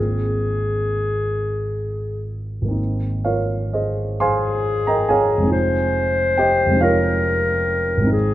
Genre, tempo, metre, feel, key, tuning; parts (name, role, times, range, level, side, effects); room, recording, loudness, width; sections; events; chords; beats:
classical, impressionist duo for clarinet and grand piano; 41-47 BPM (dotted quarters); 6/8; rubato; Ab major; A4 = 442 Hz
warm clarinet; melody; 0.0-8.3 s; Ab4 to C5; -21 LUFS; left 3 dB
dark concert grand piano; accompaniment; 0.0-8.3 s; F1 to C6; -19 LUFS; right 1 dB
light reverb; close, detailed microphones; -18 LUFS; side -14 dB against mid
0.0-2.8 A section; 2.8-8.3 A section
0.0 Ab69; 2.8 Abadd9
1.38 | 2.78 4.21 | 5.53 6.83 | 8.13